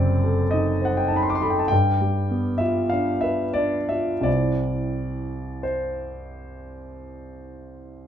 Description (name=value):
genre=classical, romantic nocturne for solo piano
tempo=42-52 BPM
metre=4/4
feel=rubato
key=C major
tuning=A4 = 440 Hz
part: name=warm grand piano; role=solo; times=0.0-8.1 s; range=F#1 to D6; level=-22 LUFS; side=equal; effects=none
room=moderate large studio reverb, RT60 0.9 s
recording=minimal, uncompressed stereo recording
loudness=-21 LUFS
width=side -9 dB against mid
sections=0.0-8.1 A section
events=none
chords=0.0 F#dim7; 1.7 G7; 4.3 C